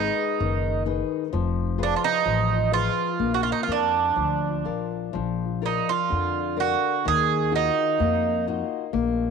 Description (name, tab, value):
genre	fado-style ballad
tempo	64 BPM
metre	2/4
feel	rubato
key	Eb harmonic minor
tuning	A4 = 440 Hz
part	Irish bouzouki	melody	0.0-8.4 s	D4 to Ab4	-24 LUFS	right 9 dB	none
part	flamenco guitar	accompaniment	0.0-9.3 s	D3 to F5	-27 LUFS	left 11 dB	none
part	upright bass	bass	0.0-9.3 s	F1 to F2	-28 LUFS	left 1 dB	none
room	moderate plate reverb, RT60 2.8 s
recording	1960s-style stereo with parts hard left and right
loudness	-22 LUFS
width	side -6 dB against mid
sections	0.0-9.3 A section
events	none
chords	0.0 Abm; 1.3 Fdim; 3.2 Bb; 7.1 Ebmadd9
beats	0.41 | 1.34 2.26 | 3.20 4.17 | 5.15 6.12 | 7.07 8.01 | 8.95